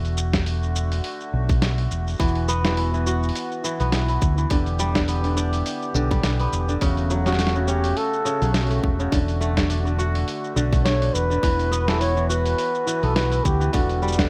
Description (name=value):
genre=folktronica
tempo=104 BPM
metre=4/4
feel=swing 56% on 16ths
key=E dorian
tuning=A4 = 440 Hz
part: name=accordion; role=sustained chords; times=0.0-14.3 s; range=C#3 to G4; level=-34 LUFS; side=equal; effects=light tremolo tuning
part: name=fingered electric bass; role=bass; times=0.0-14.3 s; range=E1 to D2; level=-25 LUFS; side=equal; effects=none
part: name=lo-fi sampler-style drum kit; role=drums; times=0.0-14.3 s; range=hi-hat, shaker, snare drum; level=-30 LUFS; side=equal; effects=none
part: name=electronic kick drum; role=drums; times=0.3-14.3 s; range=none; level=-24 LUFS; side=equal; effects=none
part: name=kora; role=arpeggios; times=2.2-14.3 s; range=C#3 to F#4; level=-28 LUFS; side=equal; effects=none
part: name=mellow flugelhorn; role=melody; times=7.3-14.3 s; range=F#4 to C#5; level=-27 LUFS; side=equal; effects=none
room=studio ambience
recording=none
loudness=-22 LUFS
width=mono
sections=0.0-14.3 A section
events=none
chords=0.0 D/E; 2.2 Esus2; 4.5 G6/E; 6.8 A6/E; 9.1 D/E; 13.7 G6/E